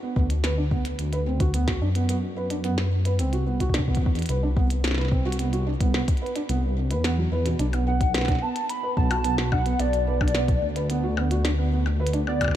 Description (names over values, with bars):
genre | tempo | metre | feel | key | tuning
IDM | 109 BPM | 4/4 | straight | B phrygian | A4 = 440 Hz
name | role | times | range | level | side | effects
felt-muted upright piano | arpeggios | 0.0-12.3 s | B2 to B4 | -28 LUFS | right 3 dB | digital delay
dark detuned saw bass | bass | 0.2-12.6 s | B1 to F#2 | -24 LUFS | equal | none
electronic kick drum | drums | 0.2-12.5 s | none | -24 LUFS | equal | small room ambience
glitchy drum kit | drums | 0.3-12.5 s | hi-hat, percussion blips, snare drum | -32 LUFS | left 1 dB | small room ambience, digital delay
warbly nostalgic lead | melody | 7.9-12.6 s | D5 to B5 | -28 LUFS | equal | tremolo, analog chorus, digital delay
room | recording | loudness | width
light reverb | dark, warm production | -22 LUFS | side -11 dB against mid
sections
0.0-12.6 A section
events
none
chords
0.0 D; 3.2 Cmaj7; 7.6 Bm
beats
0.44 | 0.99 1.54 2.09 2.64 | 3.19 3.74 4.29 4.84 | 5.39 5.94 6.49 7.04 | 7.59 8.14 8.70 9.24 | 9.80 10.35 10.90 11.45 | 12.00 12.55